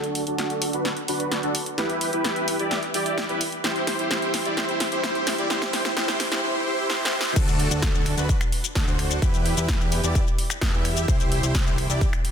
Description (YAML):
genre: EDM, festival progressive house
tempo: 129 BPM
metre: 4/4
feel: straight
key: unclear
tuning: A4 = 440 Hz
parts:
  - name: dense compressed supersaw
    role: riff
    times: 0.0-12.1 s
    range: D4 to E5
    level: -25 LUFS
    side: right 1 dB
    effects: sidechain pumping, low-pass filter, dub echo
  - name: big-room dance drum kit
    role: drums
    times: 0.0-12.3 s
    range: crash cymbal, finger snaps, hi-hat, shaker, snare drum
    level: -27 LUFS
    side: equal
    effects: none
  - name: fat analog bass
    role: bass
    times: 7.4-12.1 s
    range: C2 to E2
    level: -26 LUFS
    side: equal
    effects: sidechain pumping
  - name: electronic kick drum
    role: drums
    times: 7.4-12.1 s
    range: none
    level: -23 LUFS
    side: equal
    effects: none
room: moderate lush hall reverb, RT60 2.0 s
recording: dense, heavily limited modern master, high-pass filter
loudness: -21 LUFS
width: side -8 dB against mid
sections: 0.0-7.4 A section; 7.4-12.3 B section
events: build-up 0.0-7.4; drum fill 0.0-6.4, 6.9-7.4; filter sweep on supersaw synth 0.0-7.4; drop 7.4-12.3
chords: 0.0 D; 1.8 Em; 3.6 C; 5.5 C/E; 7.4 D; 9.2 Em; 11.1 C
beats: 0.39 0.85 1.32 | 1.78 2.25 2.71 3.18 | 3.64 4.11 4.57 5.04 | 5.50 5.97 6.43 6.90 | 7.36 7.83 8.29 8.76 | 9.22 9.69 10.15 10.62 | 11.08 11.55 12.01